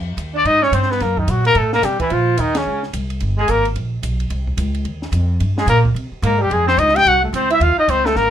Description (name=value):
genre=jazz, small-group swing and bop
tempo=218 BPM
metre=4/4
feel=swing 61% on 8ths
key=F minor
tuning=A4 = 441 Hz
part: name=upright bass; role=bass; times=0.0-8.3 s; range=G1 to C3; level=-19 LUFS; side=equal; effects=none
part: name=compact cocktail drum kit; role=drums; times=0.2-8.2 s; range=hi-hat, kick drum, ride cymbal, snare drum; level=-30 LUFS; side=equal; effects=none
part: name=breathy alto saxophone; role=second line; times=0.3-8.3 s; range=Db3 to G4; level=-21 LUFS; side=right 4 dB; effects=none
part: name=mellow trumpet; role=melody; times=0.4-8.3 s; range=Db4 to G5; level=-16 LUFS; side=left 2 dB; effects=none
room=light reverb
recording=minimal, uncompressed stereo recording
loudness=-15 LUFS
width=side -10 dB against mid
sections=0.0-8.3 A section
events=band accent 2.5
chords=0.0 Fm9; 1.0 Gb6; 1.6 Am7; 2.1 Bbmadd9; 3.2 Gm; 4.3 Cm; 5.4 Gm; 6.0 Abmaj9; 6.5 F5; 7.6 F7b13